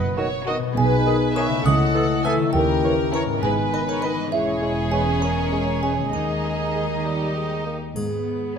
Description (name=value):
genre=cinematic, playful, whimsical film cue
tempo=67 BPM (dotted quarters)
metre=6/8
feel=straight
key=G# minor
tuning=A4 = 441 Hz
part: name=music box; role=melody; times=0.0-7.6 s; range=E5 to E6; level=-28 LUFS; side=right 5 dB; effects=none
part: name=dark clarinet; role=second line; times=0.0-8.6 s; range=E4 to E5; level=-30 LUFS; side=equal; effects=none
part: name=concert harp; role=arpeggios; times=0.0-8.6 s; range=G#2 to A#4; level=-29 LUFS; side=left 10 dB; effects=none
part: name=warm studio cello section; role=bass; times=0.0-8.6 s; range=D#2 to D#3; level=-28 LUFS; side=right 4 dB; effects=none
part: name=warm studio double bass section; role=bass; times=0.0-8.6 s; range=E1 to D#2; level=-28 LUFS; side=right 4 dB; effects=none
part: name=mellow cor anglais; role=second line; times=0.2-7.8 s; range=F#4 to D#5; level=-34 LUFS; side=right 2 dB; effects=none
part: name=dark bassoon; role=accompaniment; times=0.2-7.8 s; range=D#3 to A#3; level=-32 LUFS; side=right 2 dB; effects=none
part: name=warm studio viola section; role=accompaniment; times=0.2-8.6 s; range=B3 to D#5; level=-30 LUFS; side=right 1 dB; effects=none
part: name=mellow French horn section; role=sustained chords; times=0.2-7.7 s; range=G3 to E4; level=-28 LUFS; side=left 2 dB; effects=none
part: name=rich studio violin section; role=second line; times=0.5-7.8 s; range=B3 to A4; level=-31 LUFS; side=left 3 dB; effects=none
part: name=warm studio violin section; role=melody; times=0.8-8.6 s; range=G#4 to G#5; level=-30 LUFS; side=left 4 dB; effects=none
part: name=mellow large flute ensemble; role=second line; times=0.8-7.6 s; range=E5 to E6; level=-33 LUFS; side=equal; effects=none
part: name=triangle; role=percussion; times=8.0-8.6 s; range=none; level=-43 LUFS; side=left 4 dB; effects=none
room=wet scoring stage reverb, RT60 1.7 s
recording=none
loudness=-19 LUFS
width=side -7 dB against mid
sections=0.0-8.0 A section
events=none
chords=0.0 B; 0.8 G#m/B; 1.6 A/C#; 2.5 D#7b9; 3.4 G#m; 4.3 C#m/E; 6.1 D#sus4; 7.1 D#; 8.0 G#m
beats=| 0.76 1.65 | 2.54 3.43 | 4.32 5.22 | 6.13 7.05 | 7.96